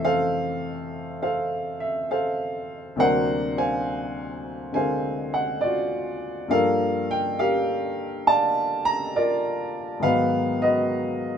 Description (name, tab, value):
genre	solo jazz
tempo	68 BPM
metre	4/4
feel	swing 67% on 8ths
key	unclear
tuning	A4 = 440 Hz
part	warm upright piano	solo	0.0-11.4 s	D2 to Bb5	-22 LUFS	equal	none
room	light reverb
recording	minimal, uncompressed stereo recording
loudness	-22 LUFS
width	side -8 dB against mid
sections	0.0-11.4 A section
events	none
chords	0.0 Fmaj7; 3.0 D7alt; 6.5 Gm9; 10.0 Abm7